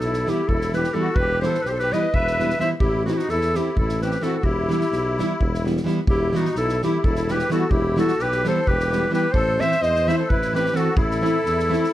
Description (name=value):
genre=balkan folk, Balkan wedding band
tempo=257 BPM (eighths)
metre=7/8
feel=straight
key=E harmonic minor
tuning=A4 = 440 Hz
part: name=clear clarinet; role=melody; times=0.0-11.9 s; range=F#4 to E5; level=-23 LUFS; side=equal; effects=plate reverb
part: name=musette accordion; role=second line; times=0.0-11.9 s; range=D#4 to C5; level=-28 LUFS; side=left 4 dB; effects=none
part: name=mellow tuba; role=bass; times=0.0-11.7 s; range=E1 to E2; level=-26 LUFS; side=equal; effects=none
part: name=street-band drum kit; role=percussion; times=0.0-11.9 s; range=kick drum, snare drum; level=-26 LUFS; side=equal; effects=none
part: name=nylon-string guitar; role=accompaniment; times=0.3-11.8 s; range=E3 to E4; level=-24 LUFS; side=equal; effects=none
room=moderate studio reverb, RT60 0.6 s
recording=none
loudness=-19 LUFS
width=side -13 dB against mid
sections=0.0-6.1 A section; 6.1-11.9 A section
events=none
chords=0.0 Em; 2.8 Am; 4.4 Em; 9.3 Am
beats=0.22 0.45 0.69 0.92 | 1.16 1.39 1.63 1.86 2.10 2.33 2.56 | 2.80 3.03 3.27 3.50 3.74 3.97 4.21 | 4.44 4.67 4.91 5.14 5.38 5.61 5.84 | 6.08 6.31 6.54 6.78 7.01 7.24 7.48 | 7.71 7.94 8.18 8.41 8.64 8.88 9.11 | 9.34 9.57 9.80 10.04 10.27 10.50 10.73 | 10.97 11.20 11.43 11.66 11.89